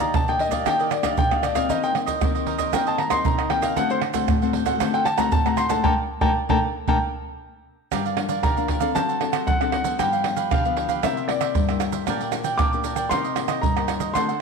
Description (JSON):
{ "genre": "samba and choro", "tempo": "116 BPM", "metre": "4/4", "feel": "straight", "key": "G minor", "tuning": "A4 = 440 Hz", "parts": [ { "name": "warm baby grand piano", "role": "melody", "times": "0.0-14.4 s", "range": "Bb4 to D6", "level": "-24 LUFS", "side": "left 2 dB", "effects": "none" }, { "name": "cavaquinho", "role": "accompaniment", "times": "0.0-14.4 s", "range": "D4 to G5", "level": "-28 LUFS", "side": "right 8 dB", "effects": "none" }, { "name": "nylon-string guitar", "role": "accompaniment", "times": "0.0-14.4 s", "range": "G2 to A4", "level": "-27 LUFS", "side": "left 10 dB", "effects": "none" }, { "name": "maracas, surdo, pandeiro and tamborim", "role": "percussion", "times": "0.1-14.4 s", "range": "none", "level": "-24 LUFS", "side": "right 4 dB", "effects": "none" } ], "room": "wet echo chamber reverb, RT60 1.3 s, small room reverb", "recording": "1960s-style stereo with parts hard left and right", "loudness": "-20 LUFS", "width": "side -5 dB against mid", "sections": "0.0-7.9 A section; 7.9-14.4 B section", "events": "grand piano solo 0.0-7.9; band accent 5.8-7.9; drum fill 7.5-7.9", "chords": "0.0 Ebmaj7; 1.7 Cm7/Eb; 3.8 D7; 5.8 Gmadd9 (rootless); 7.9 Gm7; 9.0 D7/F#; 10.0 G7; 11.0 C7; 12.1 Gm/Bb; 13.1 Cm7" }